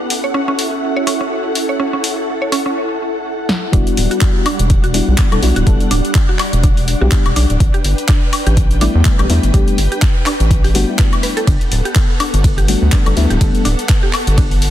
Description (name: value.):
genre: deep house.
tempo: 124 BPM.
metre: 4/4.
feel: swing 57% on 16ths.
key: E dorian.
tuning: A4 = 440 Hz.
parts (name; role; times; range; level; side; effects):
soft string machine; sustained chords; 0.0-14.7 s; G3 to G5; -23 LUFS; equal; ensemble chorus, sidechain pumping.
warbly tape-like pad; texture; 0.0-2.8 s; B3 to A5; -23 LUFS; right 6 dB; chorus, built-in reverb, sidechain pumping.
deep house drum kit; drums; 0.1-14.7 s; handclaps, hi-hat, ride cymbal, snare drum, woodblock; -20 LUFS; left 2 dB; overdrive.
mallet-like synth pluck; arpeggios; 0.2-14.5 s; C#4 to C#5; -23 LUFS; right 2 dB; chorus, sidechain pumping, tape echo.
mellow FM electric piano; stabs; 3.7-13.7 s; G3 to A4; -19 LUFS; left 3 dB; chorus, sidechain pumping, ping-pong delay.
round analog bass; bass; 3.7-14.7 s; D1 to E2; -14 LUFS; equal; sidechain pumping.
electronic kick drum; drums; 3.7-14.5 s; none; -13 LUFS; equal; overdrive.
room: digital ambience.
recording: dense, heavily limited modern master, faint mains hum.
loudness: -12 LUFS.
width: side -12 dB against mid.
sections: 0.0-3.7 A section; 3.7-14.7 B section.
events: drum fill 3.5; drop 3.7-14.7.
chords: 0.0 F#m7; 3.7 Em9; 7.6 A9sus4; 11.5 Gmaj9.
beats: 0.34 0.83 1.31 | 1.80 2.28 2.76 3.25 | 3.73 4.22 4.70 5.18 | 5.67 6.15 6.63 7.12 | 7.60 8.09 8.57 9.05 | 9.54 10.02 10.51 10.99 | 11.47 11.96 12.44 12.93 | 13.41 13.89 14.38.